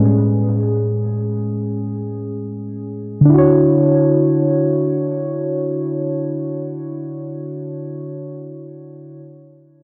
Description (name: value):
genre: hip hop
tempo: free time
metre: none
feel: none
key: D major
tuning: A4 = 438 Hz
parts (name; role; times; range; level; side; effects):
- muted felt-like synth keys; solo; 0.0-9.2 s; A2 to C#5; -19 LUFS; equal; chorus, cassette tape, tape echo
room: wet small room reverb, RT60 0.5 s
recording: none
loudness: -18 LUFS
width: mono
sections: 0.0-3.3 A section; 3.3-6.7 B section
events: synth keys solo 0.0-3.3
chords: 0.0 Amaj7; 3.3 Dmaj9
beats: free time